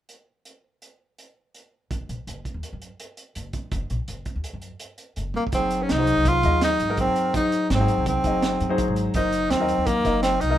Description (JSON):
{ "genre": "progressive instrumental, band music in an uneven meter", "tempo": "166 BPM", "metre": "5/4", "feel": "straight", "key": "unclear", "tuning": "A4 = 440 Hz", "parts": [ { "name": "crunchy breakbeat drum kit", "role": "drums", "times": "0.1-10.5 s", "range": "hi-hat, kick drum, snare drum, toms", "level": "-30 LUFS", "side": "right 2 dB", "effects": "none" }, { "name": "upright bass", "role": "bass", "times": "1.9-10.6 s", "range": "Gb1 to Gb2", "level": "-28 LUFS", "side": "equal", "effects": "none" }, { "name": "clear tenor saxophone", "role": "melody", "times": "5.4-10.6 s", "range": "Bb3 to F4", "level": "-22 LUFS", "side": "equal", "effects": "none" }, { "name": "warm grand piano", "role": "accompaniment", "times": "5.5-10.6 s", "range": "Gb3 to Eb5", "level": "-26 LUFS", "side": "left 1 dB", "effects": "none" } ], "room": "moderate small room reverb, RT60 0.5 s", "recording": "minimal, uncompressed stereo recording", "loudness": "-20 LUFS", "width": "side -12 dB against mid", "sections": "0.1-1.9 A section; 1.9-5.5 B section; 5.5-10.6 C section", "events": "drum fill 5.3", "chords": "0.1 N.C.; 5.5 Fm7/Gb (rootless); 9.1 Ab7/Gb (rootless)" }